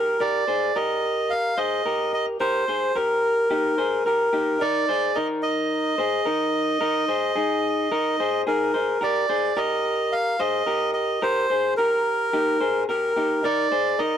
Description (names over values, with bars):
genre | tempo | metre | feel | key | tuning
indie pop | 109 BPM | 4/4 | straight | Eb major | A4 = 440 Hz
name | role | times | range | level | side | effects
melodica | melody | 0.0-14.2 s | Bb4 to F5 | -22 LUFS | right 2 dB | none
electric guitar through a small old amp | arpeggios | 0.0-14.2 s | Eb4 to C5 | -24 LUFS | left 2 dB | none
room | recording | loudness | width
light reverb | dry, close 1970s-style studio recording | -20 LUFS | side -9 dB against mid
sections
0.0-14.2 A section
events
none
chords
0.2 Eb; 4.6 Abadd9; 9.0 Eb; 13.4 Abadd9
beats
| 0.20 0.75 1.30 1.85 | 2.40 2.95 3.50 4.05 | 4.61 5.16 5.71 6.26 | 6.81 7.36 7.91 8.46 | 9.01 9.56 10.12 10.67 | 11.22 11.77 12.32 12.88 | 13.43 13.98